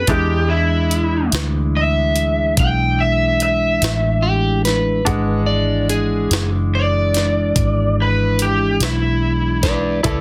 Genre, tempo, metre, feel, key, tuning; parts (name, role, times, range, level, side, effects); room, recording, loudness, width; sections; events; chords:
slow blues; 48 BPM (dotted quarters); 12/8; straight; E mixolydian; A4 = 440 Hz
lead guitar through a small cranked amp; melody; 0.0-9.6 s; E4 to G5; -22 LUFS; equal; overdrive
bright upright piano; accompaniment; 0.0-10.2 s; G#3 to F#5; -29 LUFS; equal
mellow tonewheel organ; sustained chords; 0.0-10.2 s; C#3 to E4; -25 LUFS; equal; slow rotary speaker
vintage muted fingered electric bass; bass; 0.0-10.2 s; F#1 to E2; -22 LUFS; equal
jungle sampler-style drum kit; drums; 0.1-10.2 s; hi-hat, kick drum, snare drum; -24 LUFS; equal
electric slide guitar; second line; 4.2-10.2 s; G4 to D5; -23 LUFS; equal
moderate club reverb, RT60 0.6 s; dense, heavily limited modern master; -17 LUFS; mono
0.0-10.2 A section
0.1 E9